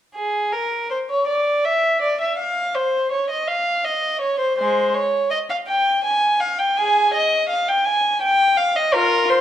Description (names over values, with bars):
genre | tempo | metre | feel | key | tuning
classical, baroque-style suite movement for unaccompanied violin | 55 BPM (dotted quarters) | 6/8 | rubato | F minor | A4 = 442 Hz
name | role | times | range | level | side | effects
dark violin | solo | 0.2-9.4 s | Ab3 to Ab5 | -17 LUFS | equal | none
room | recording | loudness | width
moderate recital hall reverb, RT60 1.3 s | none | -17 LUFS | side -11 dB against mid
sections
0.2-9.4 A section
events
none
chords
none